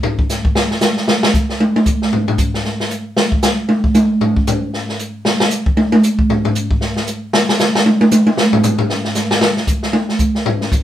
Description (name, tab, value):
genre	jazz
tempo	230 BPM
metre	4/4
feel	swing 59% on 8ths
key	none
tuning	none
part	open jazz drum kit	drums	0.0-10.8 s	hi-hat, kick drum, snare drum, toms	-13 LUFS	equal	none
room	light reverb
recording	band playing live in one room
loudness	-13 LUFS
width	side -11 dB against mid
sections	0.0-1.1 A section; 1.1-9.4 A section; 9.4-10.8 A section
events	drum solo 0.0-1.1, 1.1-10.8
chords	none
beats	| 0.04 0.30 0.56 0.82 | 1.08 1.34 1.60 1.86 | 2.12 2.38 2.64 2.90 | 3.17 3.43 3.69 3.95 | 4.21 4.47 4.73 4.99 | 5.25 5.51 5.77 6.03 | 6.29 6.55 6.81 7.07 | 7.33 7.59 7.86 8.12 | 8.38 8.64 8.90 9.16 | 9.42 9.68 9.94 10.20 | 10.46 10.72